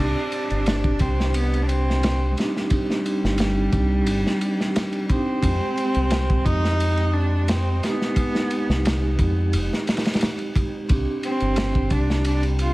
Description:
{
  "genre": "trip hop",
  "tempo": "88 BPM",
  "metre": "4/4",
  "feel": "straight",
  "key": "C harmonic minor",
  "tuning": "A4 = 440 Hz",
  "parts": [
    { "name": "warm cello", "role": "melody", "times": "0.0-12.7 s", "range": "G3 to F4", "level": "-26 LUFS", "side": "equal", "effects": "vintage 12-bit sampler grit, tape echo" },
    { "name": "vibraphone with medium hard mallets", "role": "accompaniment", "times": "0.0-12.7 s", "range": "Ab3 to G4", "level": "-27 LUFS", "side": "right 2 dB", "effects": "tremolo, low-pass filter" },
    { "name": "deep dub fingered electric bass", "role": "bass", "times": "0.0-12.7 s", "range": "F1 to F2", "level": "-22 LUFS", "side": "equal", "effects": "none" },
    { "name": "crunchy breakbeat drum kit", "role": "drums", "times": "0.3-12.7 s", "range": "kick drum, ride cymbal, snare drum", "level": "-25 LUFS", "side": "equal", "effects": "vintage 12-bit sampler grit" }
  ],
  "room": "small room ambience",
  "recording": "vinyl crackle, lossy compression artefacts",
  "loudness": "-19 LUFS",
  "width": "side -19 dB against mid",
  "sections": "0.0-12.7 A section",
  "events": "none",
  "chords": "0.0 Cmadd9; 5.4 Fm7; 10.9 Csus2"
}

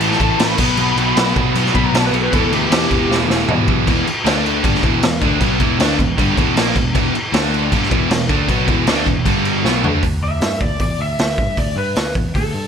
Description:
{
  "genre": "hard rock",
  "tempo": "156 BPM",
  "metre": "4/4",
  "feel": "straight",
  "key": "E minor",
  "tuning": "A4 = 440 Hz",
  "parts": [
    { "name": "lead guitar through a small cranked amp", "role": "melody", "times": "0.0-3.3, 10.2-12.7 s", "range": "G4 to B5", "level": "-22 LUFS", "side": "left 1 dB", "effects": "overdrive, wide subtle chorus, digital delay" },
    { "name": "distorted electric guitar", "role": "riff", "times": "0.0-10.0 s", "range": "E2 to D4", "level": "-21 LUFS", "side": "right 14 dB", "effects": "overdrive" },
    { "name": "overdriven semi-hollow guitar", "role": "riff", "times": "0.0-10.0 s", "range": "E2 to D4", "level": "-22 LUFS", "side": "left 13 dB", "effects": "none" },
    { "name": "scooped high-gain guitar", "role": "riff", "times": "0.0-10.0 s", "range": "E2 to D4", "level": "-24 LUFS", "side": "equal", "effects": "distortion" },
    { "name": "picked electric bass", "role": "bass", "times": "0.0-12.7 s", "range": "E1 to G2", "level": "-22 LUFS", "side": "equal", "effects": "none" },
    { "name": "raw garage drum kit", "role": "drums", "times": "0.0-12.4 s", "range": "crash cymbal, hi-hat, kick drum, snare drum, toms", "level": "-18 LUFS", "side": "equal", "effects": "none" }
  ],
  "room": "light reverb, small room ambience",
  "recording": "bright 1980s-style digital production",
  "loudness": "-14 LUFS",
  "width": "side -7 dB against mid",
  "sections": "0.0-3.9 A section; 3.9-10.0 B section; 10.0-12.7 C section",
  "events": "lead electric guitar solo 0.0-3.9; drum fill 3.1-3.9, 9.6-10.0",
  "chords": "0.0 A5; 0.6 B5; 2.3 Em; 3.9 E5; 4.3 D5; 4.6 Em; 7.3 D5; 7.7 Em; 9.3 G5; 9.6 Bm7; 10.0 D5"
}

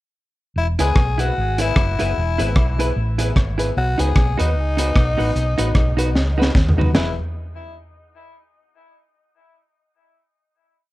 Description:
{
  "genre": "ska",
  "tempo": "150 BPM",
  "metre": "4/4",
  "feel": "swing 57% on 8ths",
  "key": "E major",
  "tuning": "A4 = 439 Hz",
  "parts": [
    { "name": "growling tenor saxophone", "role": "melody", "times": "0.6-7.2 s", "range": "D#4 to G#4", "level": "-25 LUFS", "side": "left 3 dB", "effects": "dub echo, plate reverb" },
    { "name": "hollow-body short-scale fingered electric bass", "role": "bass", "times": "0.6-7.2 s", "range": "E1 to D#2", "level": "-20 LUFS", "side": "equal", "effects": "none" },
    { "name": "clean electric guitar", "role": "accompaniment", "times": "0.8-7.1 s", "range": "D#4 to B4", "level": "-26 LUFS", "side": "right 5 dB", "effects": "none" },
    { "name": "warm upright piano", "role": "stabs", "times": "0.8-7.1 s", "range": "B3 to B4", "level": "-29 LUFS", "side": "left 5 dB", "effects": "none" },
    { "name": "crunchy breakbeat drum kit", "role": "drums", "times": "0.8-7.1 s", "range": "crash cymbal, hi-hat, kick drum, rim click, snare drum, toms", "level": "-19 LUFS", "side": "equal", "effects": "none" }
  ],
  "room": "little or no reverb",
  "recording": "none",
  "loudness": "-16 LUFS",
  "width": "side -17 dB against mid",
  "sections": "0.6-7.0 head; 7.0-8.6 final chord",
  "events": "drum fill 6.2-7.0",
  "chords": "0.6 E; 3.8 B; 7.0 E"
}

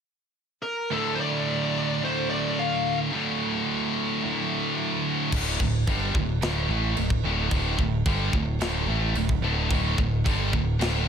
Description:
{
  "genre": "heavy metal",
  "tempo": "109 BPM",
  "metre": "4/4",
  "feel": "straight",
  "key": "unclear",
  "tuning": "A4 = 441 Hz",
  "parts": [
    { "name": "high-gain lead guitar", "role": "melody", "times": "0.6-3.0 s", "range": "A4 to F5", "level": "-29 LUFS", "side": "left 2 dB", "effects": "distortion" },
    { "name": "high-gain distorted guitar", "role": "riff", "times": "0.9-11.1 s", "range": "D2 to A3", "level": "-28 LUFS", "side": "left 10 dB", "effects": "distortion" },
    { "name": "scooped high-gain guitar", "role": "riff", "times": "0.9-11.1 s", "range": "D2 to A3", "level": "-28 LUFS", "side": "right 10 dB", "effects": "distortion" },
    { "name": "modern bright picked electric bass", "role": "bass", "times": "5.3-11.1 s", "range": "D1 to A1", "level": "-28 LUFS", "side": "equal", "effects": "none" },
    { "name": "tight metal drum kit", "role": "drums", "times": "5.3-10.9 s", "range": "crash cymbal, kick drum, snare drum", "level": "-28 LUFS", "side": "equal", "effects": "none" }
  ],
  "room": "light reverb",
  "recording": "none",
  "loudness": "-23 LUFS",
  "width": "side -8 dB against mid",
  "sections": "0.9-5.3 A section; 5.3-11.1 B section",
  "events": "none",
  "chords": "0.0 N.C.; 0.9 D5"
}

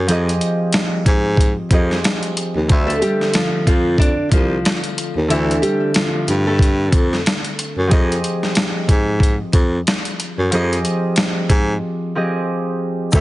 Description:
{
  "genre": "hip hop, boom-bap hip-hop",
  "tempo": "92 BPM",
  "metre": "4/4",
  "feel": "swing 57% on 16ths",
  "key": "unclear",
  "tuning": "A4 = 440 Hz",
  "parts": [
    { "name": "concert harp", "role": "accompaniment", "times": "0.0-13.2 s", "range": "D3 to E5", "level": "-21 LUFS", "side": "equal", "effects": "cassette tape, high-pass filter, low-pass filter" },
    { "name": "breathy baritone saxophone", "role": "bass", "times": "0.0-13.2 s", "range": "C2 to Ab2", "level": "-19 LUFS", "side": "equal", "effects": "none" },
    { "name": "boom bap sampler-style drum kit", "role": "drums", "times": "0.1-13.2 s", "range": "hi-hat, kick drum, snare drum", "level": "-17 LUFS", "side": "equal", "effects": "none" },
    { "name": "nylon-string guitar", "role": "melody", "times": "2.9-7.2 s", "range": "E3 to D5", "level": "-21 LUFS", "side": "equal", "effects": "high-pass filter, low-pass filter, ping-pong delay" },
    { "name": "lush unison pad", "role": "sustained chords", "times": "13.1-13.2 s", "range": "none", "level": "barely audible", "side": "none", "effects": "none" },
    { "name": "tube shaker", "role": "percussion", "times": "13.1-13.2 s", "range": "none", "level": "-26 LUFS", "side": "left 4 dB", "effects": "none" }
  ],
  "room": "light reverb, small room ambience",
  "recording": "heavily compressed radio sound, multiband compression, nothing above 10.6 kHz",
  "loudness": "-15 LUFS",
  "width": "side -17 dB against mid",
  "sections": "0.0-13.1 A section",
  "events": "break 11.8-13.1",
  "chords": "0.0 Fm9; 2.7 Dm9; 7.9 Fm9"
}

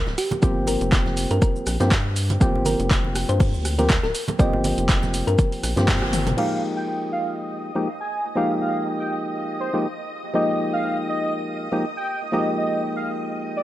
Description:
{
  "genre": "deep house",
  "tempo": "121 BPM",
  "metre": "4/4",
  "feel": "swing 55% on 16ths",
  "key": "F minor",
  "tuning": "A4 = 440 Hz",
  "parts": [
    { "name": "rubbery square bass", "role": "bass", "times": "0.0-6.3 s", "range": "D1 to G2", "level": "-24 LUFS", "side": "equal", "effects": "tube saturation, sidechain pumping" },
    { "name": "vintage brush drum kit", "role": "drums", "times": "0.1-6.4 s", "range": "hi-hat, shaker, snare drum", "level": "-35 LUFS", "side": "right 1 dB", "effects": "none" },
    { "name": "bongos and congas", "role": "percussion", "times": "0.1-6.4 s", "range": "none", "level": "-31 LUFS", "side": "right 2 dB", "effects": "none" },
    { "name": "thumb-piano-like synth pluck", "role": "melody", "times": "0.2-5.8 s", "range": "G4 to Eb5", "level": "-28 LUFS", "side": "left 1 dB", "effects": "chorus, cassette tape, tape echo" },
    { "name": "punchy analog drum machine", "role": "drums", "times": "0.2-6.5 s", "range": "crash cymbal, handclaps, hi-hat, rim click, shaker, toms", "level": "-27 LUFS", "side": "equal", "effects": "overdrive" },
    { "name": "percussive organ stab", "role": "stabs", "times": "0.4-13.6 s", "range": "F3 to G4", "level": "-25 LUFS", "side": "equal", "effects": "chorus, sidechain pumping, analog delay" },
    { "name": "electronic kick drum", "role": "drums", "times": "0.4-6.0 s", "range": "none", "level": "-20 LUFS", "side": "equal", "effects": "overdrive" },
    { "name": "warm velvety synth lead", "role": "melody", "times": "6.4-13.6 s", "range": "C5 to Ab5", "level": "-27 LUFS", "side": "right 1 dB", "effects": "chorus, cassette tape, tape echo" },
    { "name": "soft string machine", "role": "texture", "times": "6.7-13.6 s", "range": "Eb5 to Eb6", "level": "-34 LUFS", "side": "equal", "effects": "ensemble chorus, sidechain pumping" }
  ],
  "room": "light reverb, digital ambience",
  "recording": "none",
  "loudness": "-20 LUFS",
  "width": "side -14 dB against mid",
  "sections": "0.0-6.4 A section; 6.4-13.6 B section",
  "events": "band accent 5.9; drum fill 6.1",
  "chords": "0.0 C7sus4; 6.4 Fm11"
}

